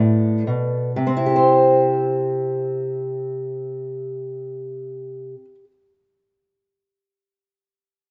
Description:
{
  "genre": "folk, solo fingerstyle acoustic guitar",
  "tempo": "59 BPM",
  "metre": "3/4",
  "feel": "rubato",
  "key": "C major",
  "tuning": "A4 = 440 Hz",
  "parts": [
    { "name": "fingerpicked steel-string acoustic guitar", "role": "solo", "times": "0.0-5.7 s", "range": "A2 to D5", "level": "-21 LUFS", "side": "equal", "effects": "none" }
  ],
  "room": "light reverb",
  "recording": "recorded outdoors, with no room sound, nothing above 8.0 kHz",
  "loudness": "-21 LUFS",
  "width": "mono",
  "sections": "1.0-4.0 A section",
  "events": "none",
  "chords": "0.0 Gadd9 (rootless); 1.0 C"
}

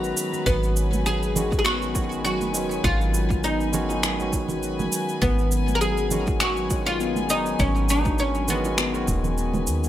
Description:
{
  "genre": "organic downtempo",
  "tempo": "101 BPM",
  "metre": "4/4",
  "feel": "swing 55% on 16ths",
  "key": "G# minor",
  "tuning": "A4 = 440 Hz",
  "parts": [
    { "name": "oud", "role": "melody", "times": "0.0-9.0 s", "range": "B3 to A#4", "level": "-26 LUFS", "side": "equal", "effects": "digital delay" },
    { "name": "barky tine electric piano", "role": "accompaniment", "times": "0.0-9.9 s", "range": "D#3 to F#4", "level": "-31 LUFS", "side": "right 1 dB", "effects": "overdrive, sidechain pumping, digital delay" },
    { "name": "dark studio string section", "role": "sustained chords", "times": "0.0-9.9 s", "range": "F#3 to A#5", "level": "-33 LUFS", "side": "left 2 dB", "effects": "sidechain pumping" },
    { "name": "woody FM bass", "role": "bass", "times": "0.0-9.9 s", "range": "D#1 to D#2", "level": "-27 LUFS", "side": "equal", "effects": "sidechain pumping" },
    { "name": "electronic cabasa and finger snaps", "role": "drums", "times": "0.0-9.9 s", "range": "none", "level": "-29 LUFS", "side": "equal", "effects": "overdrive" },
    { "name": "handpan", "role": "arpeggios", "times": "0.3-9.9 s", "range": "F#3 to F#4", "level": "-30 LUFS", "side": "left 2 dB", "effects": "vintage 12-bit sampler grit, digital delay" },
    { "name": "electronic kick drum", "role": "drums", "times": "0.5-9.2 s", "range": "none", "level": "-26 LUFS", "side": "equal", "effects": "overdrive" },
    { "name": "congas and bongos", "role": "percussion", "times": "0.5-9.6 s", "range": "none", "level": "-32 LUFS", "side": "right 3 dB", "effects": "none" }
  ],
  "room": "light reverb, small room ambience",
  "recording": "bright 1980s-style digital production",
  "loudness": "-21 LUFS",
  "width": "side -12 dB against mid",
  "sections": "0.0-9.9 A section",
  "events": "none",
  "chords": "0.0 G#m7"
}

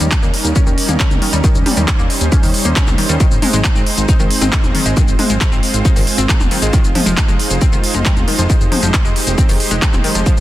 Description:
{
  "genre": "uplifting trance",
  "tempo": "136 BPM",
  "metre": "4/4",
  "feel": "straight",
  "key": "F minor",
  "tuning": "A4 = 444 Hz",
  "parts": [
    { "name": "analog pluck", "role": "arpeggios", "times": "0.0-10.3 s", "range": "Eb3 to Eb4", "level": "-23 LUFS", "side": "left 2 dB", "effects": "chorus, sidechain pumping, tape echo" },
    { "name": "fat analog bass", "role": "bass", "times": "0.0-10.4 s", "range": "Eb1 to Eb2", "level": "-19 LUFS", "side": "equal", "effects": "sidechain pumping" },
    { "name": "techno drum kit", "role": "drums", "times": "0.0-10.4 s", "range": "handclaps, hi-hat, shaker, toms", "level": "-18 LUFS", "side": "left 1 dB", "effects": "none" },
    { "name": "electronic kick drum", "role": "drums", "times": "0.1-10.4 s", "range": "none", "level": "-14 LUFS", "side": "equal", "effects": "none" }
  ],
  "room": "light reverb",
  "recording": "dense, heavily limited modern master",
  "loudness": "-11 LUFS",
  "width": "side -15 dB against mid",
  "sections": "0.0-10.4 A section",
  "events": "none",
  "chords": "0.0 Eb7; 3.2 Ab; 6.7 Fm7"
}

